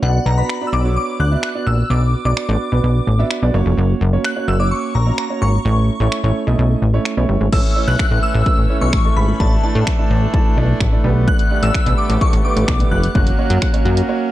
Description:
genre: dance-pop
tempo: 128 BPM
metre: 4/4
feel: straight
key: B harmonic minor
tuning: A4 = 441 Hz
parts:
  - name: shimmering bell with halo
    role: melody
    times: 0.0-13.8 s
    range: F#5 to F#6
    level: -23 LUFS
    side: left 2 dB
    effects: ensemble chorus, digital delay
  - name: warm baby grand piano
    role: accompaniment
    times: 0.0-14.3 s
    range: A3 to E5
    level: -22 LUFS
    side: right 5 dB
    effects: sidechain pumping
  - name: plucky analog bass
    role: bass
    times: 0.0-14.0 s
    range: E#1 to A2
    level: -16 LUFS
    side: equal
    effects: sidechain pumping
  - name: punchy analog drum machine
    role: drums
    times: 0.5-14.1 s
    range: crash cymbal, finger snaps, hi-hat, kick drum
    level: -17 LUFS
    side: equal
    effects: none
  - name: accordion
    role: sustained chords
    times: 7.5-14.3 s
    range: E3 to D4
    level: -27 LUFS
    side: equal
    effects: sidechain pumping
room: little or no reverb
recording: dark, warm production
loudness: -14 LUFS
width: side -14 dB against mid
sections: 0.0-7.5 A section; 7.5-14.3 B section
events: break 14.1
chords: 0.0 Bm; 3.5 F#; 5.7 A; 9.4 Dsus2/A; 11.0 Gadd9; 13.2 F#

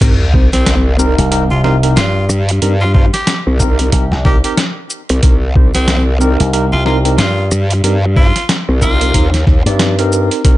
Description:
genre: glitch hop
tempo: 92 BPM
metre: 4/4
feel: swing 59% on 16ths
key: C minor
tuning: A4 = 435 Hz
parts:
  - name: tine electric piano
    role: stabs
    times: 0.0-10.6 s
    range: C4 to D5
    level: -19 LUFS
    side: equal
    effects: fast stereo tremolo, sidechain pumping, tape echo
  - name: growl bass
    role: bass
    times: 0.0-10.6 s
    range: C2 to G2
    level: -13 LUFS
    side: equal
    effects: chorus
  - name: boom bap sampler-style drum kit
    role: drums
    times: 0.0-10.6 s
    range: crash cymbal, hi-hat, shaker, snare drum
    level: -18 LUFS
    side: equal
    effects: none
  - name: electronic kick drum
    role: drums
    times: 0.0-10.6 s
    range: none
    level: -11 LUFS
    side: equal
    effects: none
  - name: sub drop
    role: sound effects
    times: 0.0-2.6 s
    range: none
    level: -20 LUFS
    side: equal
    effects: none
  - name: raspy tenor saxophone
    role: melody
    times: 0.5-9.3 s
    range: C4 to G4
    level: -21 LUFS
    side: equal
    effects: tape echo
  - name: slap bass with an envelope filter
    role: bass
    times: 1.2-10.3 s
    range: C2 to G2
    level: -13 LUFS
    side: equal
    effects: none
room: little or no reverb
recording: nothing above 10.8 kHz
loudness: -10 LUFS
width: side -16 dB against mid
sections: 0.0-10.6 A section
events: drop 0.0-10.6; impact 0.0-2.6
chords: 0.0 Cm7

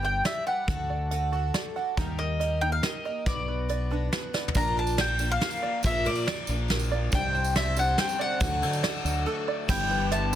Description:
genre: indie folk with a building arrangement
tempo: 140 BPM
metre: 3/4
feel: straight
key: unclear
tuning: A4 = 441 Hz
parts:
  - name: mandolin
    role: melody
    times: 0.0-10.4 s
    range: D5 to Bb5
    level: -29 LUFS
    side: left 2 dB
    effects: plate reverb
  - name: picked twelve-string acoustic guitar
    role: accompaniment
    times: 0.0-10.4 s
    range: G2 to C5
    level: -36 LUFS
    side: left 6 dB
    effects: none
  - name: open-back banjo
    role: arpeggios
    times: 0.0-10.4 s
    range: D4 to G5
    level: -34 LUFS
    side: right 9 dB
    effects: plate reverb
  - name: fingered electric bass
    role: bass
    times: 0.0-10.4 s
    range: G1 to D3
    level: -29 LUFS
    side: equal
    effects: none
  - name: soft brush drum kit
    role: drums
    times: 0.2-10.2 s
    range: crash cymbal, hi-hat, kick drum, ride cymbal, snare drum, toms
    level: -30 LUFS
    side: equal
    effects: none
  - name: tambourine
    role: percussion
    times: 4.5-10.4 s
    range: none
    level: -41 LUFS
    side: right 9 dB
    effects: none
  - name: dark upright piano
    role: accompaniment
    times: 4.6-10.4 s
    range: G1 to F5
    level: -39 LUFS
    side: right 4 dB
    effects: none
  - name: clear brass ensemble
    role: sustained chords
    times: 7.1-10.4 s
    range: D3 to C5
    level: -42 LUFS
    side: left 2 dB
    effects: none
room: light reverb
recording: dense, heavily limited modern master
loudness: -25 LUFS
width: side -11 dB against mid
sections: 0.0-4.6 A section; 4.6-9.7 B section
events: drum fill 4.3; break 9.3-9.7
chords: 0.0 G; 0.7 D; 2.0 Eb; 3.3 Bm; 4.6 Bb; 7.1 Csus2; 8.4 D; 9.7 G6

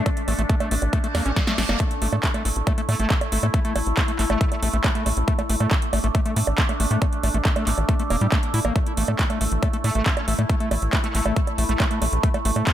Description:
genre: psychedelic trance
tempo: 138 BPM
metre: 4/4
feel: straight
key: unclear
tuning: A4 = 440 Hz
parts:
  - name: overtone-sweeping drone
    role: sustained chords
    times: 0.0-12.7 s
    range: A3 to E4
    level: -29 LUFS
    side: equal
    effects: chorus, built-in reverb, sidechain pumping
  - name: overdriven acid bass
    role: riff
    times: 0.0-12.7 s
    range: G3 to E4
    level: -28 LUFS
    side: left 1 dB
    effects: distortion, auto-pan, sidechain pumping, digital delay
  - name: big-room dance drum kit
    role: drums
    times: 0.1-12.7 s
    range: bongos, handclaps, hi-hat, snare drum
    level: -27 LUFS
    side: right 3 dB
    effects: none
  - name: electronic kick drum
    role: drums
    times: 0.1-12.7 s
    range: none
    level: -22 LUFS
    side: equal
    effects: overdrive
  - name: tight sequencer bass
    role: bass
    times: 0.3-12.6 s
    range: E1 to A2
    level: -23 LUFS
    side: equal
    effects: none
  - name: reverse cymbal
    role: sound effects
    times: 1.1-1.8 s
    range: none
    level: -34 LUFS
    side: right 6 dB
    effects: none
  - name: metallic wobble bass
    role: second line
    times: 2.9-4.6, 9.8-11.9 s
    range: A3 to C#4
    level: -37 LUFS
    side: right 4 dB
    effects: none
room: light reverb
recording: none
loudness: -20 LUFS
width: side -11 dB against mid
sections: 0.0-12.7 A section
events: reverse cymbal 1.1-1.8; drum fill 1.1-1.8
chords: 0.0 A5

